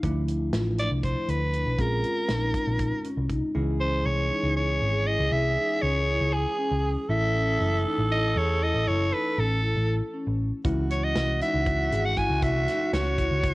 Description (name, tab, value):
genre	progressive instrumental, band music in an uneven meter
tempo	237 BPM (eighths)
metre	7/8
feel	straight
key	unclear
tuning	A4 = 440 Hz
part	bell-like tine electric piano	accompaniment	0.0-13.5 s	Fb3 to F4	-34 LUFS	right 2 dB	none
part	vibraphone with soft mallets	arpeggios	0.0-13.5 s	Db4 to Ab4	-32 LUFS	left 3 dB	none
part	hollow-body short-scale picked electric bass	bass	0.0-13.5 s	Gb1 to E2	-27 LUFS	equal	none
part	modern studio drum kit	drums	0.0-3.4, 10.6-13.5 s	hi-hat, kick drum, snare drum	-32 LUFS	equal	cassette tape
part	raspy soprano saxophone	melody	0.8-13.5 s	Ab4 to Ab5	-28 LUFS	equal	cassette tape
part	growling alto saxophone	second line	3.6-13.5 s	Gb4 to A4	-32 LUFS	right 2 dB	none
room	light reverb, studio reverb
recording	home recording on cassette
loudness	-23 LUFS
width	side -20 dB against mid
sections	0.0-3.6 A section; 3.6-13.5 B section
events	none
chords	0.0 Dmadd9; 1.8 Bbm7; 3.6 Dbm; 7.1 A; 10.6 Dbm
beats	| 0.03 0.28 0.53 0.79 1.04 1.29 1.54 | 1.79 2.04 2.29 2.54 2.80 3.05 3.30 | 3.55 3.81 4.06 4.31 4.56 4.82 5.07 | 5.32 5.57 5.83 6.08 6.33 6.59 6.84 | 7.09 7.35 7.60 7.86 8.11 8.36 8.62 | 8.87 9.12 9.38 9.63 9.89 10.14 10.39 | 10.65 10.90 11.15 11.41 11.66 11.92 12.17 | 12.42 12.68 12.93 13.18 13.44